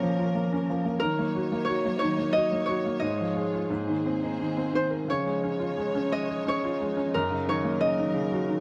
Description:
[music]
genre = children's music, lullaby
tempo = 89 BPM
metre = 3/4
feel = rubato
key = Db major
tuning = A4 = 441 Hz
[part]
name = Celtic harp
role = melody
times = 0.0-8.6 s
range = Bb4 to Eb5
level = -32 LUFS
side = equal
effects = none
[part]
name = felt-muted upright piano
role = accompaniment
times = 0.0-8.6 s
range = Gb2 to Bb4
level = -30 LUFS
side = equal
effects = none
[part]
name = dark chamber string section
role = sustained chords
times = 0.0-8.6 s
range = F3 to Db5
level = -36 LUFS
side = equal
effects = none
[sound]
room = light reverb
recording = none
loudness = -27 LUFS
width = mono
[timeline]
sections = 0.0-8.6 A section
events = none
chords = 0.0 Bbm; 1.0 Ebm7; 3.0 Db/Ab; 3.7 Abadd9; 5.1 Dbadd9; 7.1 Gb6

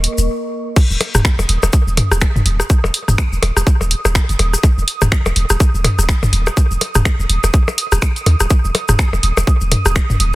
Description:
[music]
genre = minimal techno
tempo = 124 BPM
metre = 4/4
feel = swing 58% on 16ths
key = unclear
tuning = A4 = 440 Hz
[part]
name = punchy sub bass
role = bass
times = 0.0-10.3 s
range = Eb1 to Eb2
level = -16 LUFS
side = equal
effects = sidechain pumping
[part]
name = punchy analog drum machine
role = drums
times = 0.0-10.3 s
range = crash cymbal, finger snaps, hi-hat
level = -20 LUFS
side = equal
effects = soft clipping on snare
[part]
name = airy breathy pad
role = texture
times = 0.0-10.3 s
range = Bb3 to Eb6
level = -26 LUFS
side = right 3 dB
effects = chorus, sidechain pumping
[part]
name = maracas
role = percussion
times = 0.2-10.2 s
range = none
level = -25 LUFS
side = left 4 dB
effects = none
[part]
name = electronic kick drum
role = drums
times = 0.8-10.1 s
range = none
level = -13 LUFS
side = equal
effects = overdrive
[part]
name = minimal click drum kit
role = percussion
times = 0.8-10.2 s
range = percussion blips, rim click, toms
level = -19 LUFS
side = left 1 dB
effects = soft clipping on snare, dub echo
[sound]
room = little or no reverb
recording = dense, heavily limited modern master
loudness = -13 LUFS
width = side -18 dB against mid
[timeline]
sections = 0.8-10.3 A section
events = stop 0.3-0.8; drop 0.8-10.3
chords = 0.0 Eb5; 0.8 N.C.

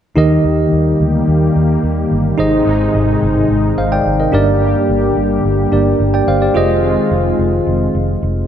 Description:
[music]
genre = pop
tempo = 108 BPM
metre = 4/4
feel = straight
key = Eb major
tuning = A4 = 440 Hz
[part]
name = tine electric piano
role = accompaniment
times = 0.2-8.5 s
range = G2 to G5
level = -14 LUFS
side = right 1 dB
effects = fast stereo tremolo
[part]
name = brassy analog pad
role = sustained chords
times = 0.2-8.5 s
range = C3 to G4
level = -18 LUFS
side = left 2 dB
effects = chorus
[part]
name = vintage muted fingered electric bass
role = bass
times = 0.2-8.4 s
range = F1 to Eb2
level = -17 LUFS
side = equal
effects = none
[sound]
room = moderate plate reverb, RT60 2.7 s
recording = bright 1980s-style digital production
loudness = -11 LUFS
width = side -9 dB against mid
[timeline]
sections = 0.2-8.5 A section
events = none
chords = 0.2 Eb; 2.4 Ab; 4.3 Gm; 6.6 Fm7

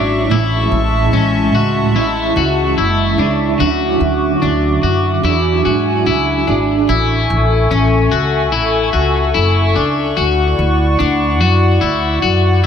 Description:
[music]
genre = dream pop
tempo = 73 BPM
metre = 4/4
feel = straight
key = A major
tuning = A4 = 440 Hz
[part]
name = electric guitar at the edge of break-up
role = accompaniment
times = 0.0-6.9 s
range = A2 to G#4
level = -18 LUFS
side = right 4 dB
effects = tremolo, ensemble chorus
[part]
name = hollow soft pad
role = sustained chords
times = 0.0-12.7 s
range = G#3 to D6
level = -18 LUFS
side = right 1 dB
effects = chorus
[part]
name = electric guitar at the edge of break-up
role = arpeggios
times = 0.0-12.7 s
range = C#4 to F#4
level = -17 LUFS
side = left 6 dB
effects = lush chorus, tape echo
[part]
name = upright bass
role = bass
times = 0.0-12.7 s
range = F#1 to G#2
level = -17 LUFS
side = equal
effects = none
[sound]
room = light reverb, digital ambience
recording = none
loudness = -12 LUFS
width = side -8 dB against mid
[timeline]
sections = 0.0-6.9 A section; 6.9-12.7 A section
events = none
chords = 0.3 Amaj7; 3.6 Dmaj9; 5.2 E9; 6.9 Amaj7; 10.2 Dmaj9

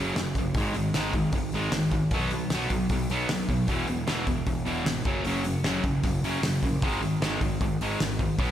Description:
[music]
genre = punk rock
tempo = 153 BPM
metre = 4/4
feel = straight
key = unclear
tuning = A4 = 439 Hz
[part]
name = distorted electric guitar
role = riff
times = 0.0-8.5 s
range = E2 to B3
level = -27 LUFS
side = equal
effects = distortion
[part]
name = fuzz picked electric bass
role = bass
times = 0.0-8.5 s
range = E1 to B1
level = -33 LUFS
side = equal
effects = overdrive
[part]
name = loose indie drum kit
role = drums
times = 0.2-8.5 s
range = hi-hat, kick drum, snare drum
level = -30 LUFS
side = equal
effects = none
[sound]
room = moderate lush hall reverb, RT60 1.9 s, small room ambience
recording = big arena sound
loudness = -24 LUFS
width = side -11 dB against mid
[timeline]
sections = 0.0-8.5 A section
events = none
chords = 0.0 F#5; 0.5 G#5; 2.1 B5; 3.7 E5; 5.1 F#5; 6.8 G#5

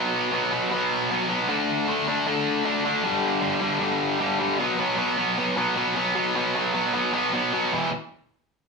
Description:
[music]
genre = punk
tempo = 154 BPM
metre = 4/4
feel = straight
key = unclear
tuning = A4 = 437 Hz
[part]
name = tight distorted guitar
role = solo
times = 0.0-7.9 s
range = E2 to D4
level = -22 LUFS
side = equal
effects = distortion
[sound]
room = light reverb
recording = small room ambience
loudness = -22 LUFS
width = side -4 dB against mid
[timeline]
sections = 0.0-4.6 A section; 4.6-7.7 B section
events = none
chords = 0.0 B5; 1.5 D5; 3.0 G5; 4.6 B5; 7.7 E5

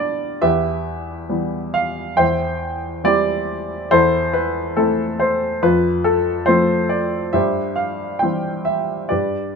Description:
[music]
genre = classical, lyrical solo piano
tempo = 69 BPM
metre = 4/4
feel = rubato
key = C major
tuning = A4 = 441 Hz
[part]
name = warm baby grand piano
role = solo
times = 0.0-9.6 s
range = E2 to G5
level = -17 LUFS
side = equal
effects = none
[sound]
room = moderate small room reverb, RT60 0.5 s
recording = minimal, uncompressed stereo recording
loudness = -17 LUFS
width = side -5 dB against mid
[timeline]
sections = 0.0-9.6 A section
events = none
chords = 0.4 Em; 2.2 C/E; 3.9 Am/E; 5.6 F; 7.4 C/G

